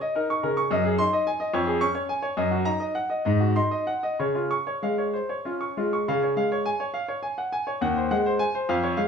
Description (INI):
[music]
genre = classical, baroque-style suite movement for grand piano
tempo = 62-73 BPM (dotted quarters)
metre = 6/8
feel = rubato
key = Db major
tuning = A4 = 440 Hz
[part]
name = bright grand piano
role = solo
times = 0.0-9.1 s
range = Eb2 to Db6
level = -23 LUFS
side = equal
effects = none
[sound]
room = wet stone room reverb, RT60 1.1 s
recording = studio reverb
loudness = -23 LUFS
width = side -6 dB against mid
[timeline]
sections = 0.0-6.1 A section; 6.1-9.1 B section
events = none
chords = 0.0 Eb7(no3); 0.7 Ab7/Gb; 1.5 Db/F; 2.4 Ebm/Gb; 3.3 Ab7; 4.2 Db; 7.8 Ab7/Eb